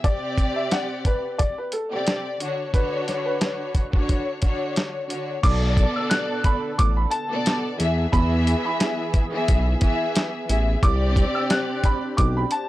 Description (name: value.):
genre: hip hop, boom-bap hip-hop.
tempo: 89 BPM.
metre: 4/4.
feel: swing 56% on 16ths.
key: B dorian.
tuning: A4 = 440 Hz.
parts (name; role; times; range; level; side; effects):
warm upright piano; melody; 0.0-12.7 s; A4 to F#6; -28 LUFS; right 1 dB; high-pass filter, low-pass filter, analog delay.
warm studio string section; accompaniment; 0.0-12.4 s; B2 to E5; -26 LUFS; left 1 dB; high-pass filter, low-pass filter.
dusty soul sampler-style drum kit; drums; 0.0-12.7 s; crash cymbal, hi-hat, kick drum, snare drum; -21 LUFS; equal; vintage 12-bit sampler grit.
warm analog pad; sustained chords; 5.4-12.7 s; D3 to A4; -32 LUFS; right 2 dB; chorus, high-pass filter, low-pass filter.
smooth synth bass; bass; 5.4-12.5 s; A1 to E2; -21 LUFS; equal; transformer saturation.
room: little or no reverb.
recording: dry, gritty hardware recording.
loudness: -20 LUFS.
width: side -16 dB against mid.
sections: 0.0-5.4 A section; 5.4-12.7 B section.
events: none.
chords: 0.0 Csus2; 2.4 Dmaj7; 5.4 Bm7; 7.8 E; 10.8 Csus2.